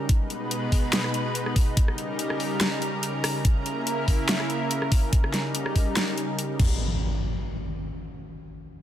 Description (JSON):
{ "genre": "heavy wobble dubstep", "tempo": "143 BPM", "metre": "4/4", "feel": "swing 53% on 16ths, half-time", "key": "G# harmonic minor", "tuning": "A4 = 440 Hz", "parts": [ { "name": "lush unison pad", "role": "sustained chords", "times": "0.0-6.8 s", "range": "B2 to B4", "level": "-28 LUFS", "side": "equal", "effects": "chorus, sidechain pumping" }, { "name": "dubstep drum kit", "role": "drums", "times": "0.1-6.7 s", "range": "crash cymbal, hi-hat, rim click, snare drum", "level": "-28 LUFS", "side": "equal", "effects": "none" }, { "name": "electronic kick drum", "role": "drums", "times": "0.1-6.7 s", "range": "none", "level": "-21 LUFS", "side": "equal", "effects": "none" }, { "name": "impact", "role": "sound effects", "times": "6.6-8.3 s", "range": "none", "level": "-29 LUFS", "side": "equal", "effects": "none" } ], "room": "light reverb", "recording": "none", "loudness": "-23 LUFS", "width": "side -11 dB against mid", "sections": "0.0-6.8 A section; 6.8-8.5 B section", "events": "none", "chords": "0.1 G#m; 1.8 D#7; 3.4 A#dim; 5.1 D#7; 6.6 G#m; 6.8 N.C.", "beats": "| 0.09 0.51 0.93 1.35 | 1.77 2.19 2.61 3.03 | 3.45 3.87 4.29 4.71 | 5.13 5.55 5.97 6.39 | 6.80 7.22 7.64 8.06" }